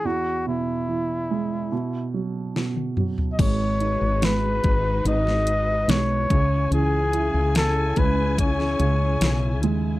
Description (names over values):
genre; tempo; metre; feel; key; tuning
pop ballad; 72 BPM; 4/4; straight; unclear; A4 = 443 Hz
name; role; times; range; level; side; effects
warm flugelhorn; melody; 0.0-9.6 s; E4 to D#5; -25 LUFS; left 1 dB; none
warm baby grand piano; accompaniment; 0.0-10.0 s; E2 to E4; -27 LUFS; right 4 dB; none
pop drum kit; drums; 2.6-9.8 s; crash cymbal, hi-hat, kick drum, snare drum, toms; -24 LUFS; left 1 dB; overdrive
warm symphonic string section; sustained chords; 3.4-10.0 s; C#3 to G#5; -30 LUFS; left 3 dB; none
woody fretless electric bass; bass; 3.4-10.0 s; G#1 to D#2; -24 LUFS; left 1 dB; none
room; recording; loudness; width
little or no reverb; dry, close 1970s-style studio recording; -20 LUFS; side -17 dB against mid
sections
0.0-3.4 A section; 3.4-10.0 B section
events
drum fill 2.6-3.4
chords
0.1 E; 1.7 B5; 3.4 G#m7; 6.3 C#m